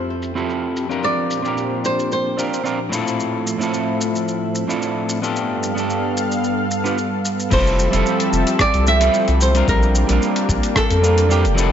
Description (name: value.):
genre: sunset chillout.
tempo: 111 BPM.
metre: 4/4.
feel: swing 54% on 16ths.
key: F major.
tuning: A4 = 441 Hz.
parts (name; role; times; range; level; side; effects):
flamenco guitar; melody; 0.0-2.9, 7.5-11.7 s; G4 to E5; -21 LUFS; right 1 dB; ping-pong delay.
electric guitar at the edge of break-up; accompaniment; 0.0-11.7 s; A2 to B4; -22 LUFS; moving between left 4 dB and right 4 dB; auto-pan, ping-pong delay.
lush unison pad; sustained chords; 0.0-11.7 s; F2 to F5; -23 LUFS; equal; chorus.
dusty soul sampler-style drum kit; drums; 0.2-11.7 s; crash cymbal, hi-hat, rim click, shaker; -26 LUFS; left 1 dB; low-pass filter on perc, low-pass filter on hats, low-pass filter on snare, low-pass filter on cymbals, low-pass filter on room.
round analog bass; bass; 7.5-11.7 s; F1 to F2; -17 LUFS; equal; none.
electronic kick drum; drums; 7.5-10.9 s; none; -21 LUFS; equal; none.
room: moderate concert hall reverb, RT60 1.9 s.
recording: nothing above 7.8 kHz.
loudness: -16 LUFS.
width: side -9 dB against mid.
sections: 0.0-7.5 A section; 7.5-11.7 B section.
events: filter sweep on analog synth pad 0.0-7.5.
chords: 0.0 Fmaj7; 1.0 Bb6; 3.2 Dm7/A; 5.4 G7; 7.5 Fmaj7.